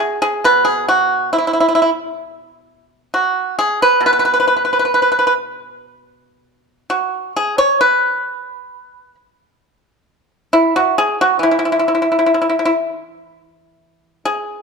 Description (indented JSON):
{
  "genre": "chinese traditional, Chinese solo plucked strings",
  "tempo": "62-69 BPM",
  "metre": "2/4",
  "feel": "rubato",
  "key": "unclear",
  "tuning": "A4 = 439 Hz",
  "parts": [
    { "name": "pipa", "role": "solo", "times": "0.0-14.6 s", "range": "B2 to C#5", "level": "-13 LUFS", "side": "right 1 dB", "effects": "none" }
  ],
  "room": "moderate recital hall reverb, RT60 1.4 s",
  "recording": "dark, warm production",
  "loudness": "-13 LUFS",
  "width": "side -4 dB against mid",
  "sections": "0.0-13.3 A section; 13.3-14.6 B section",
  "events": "none",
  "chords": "none"
}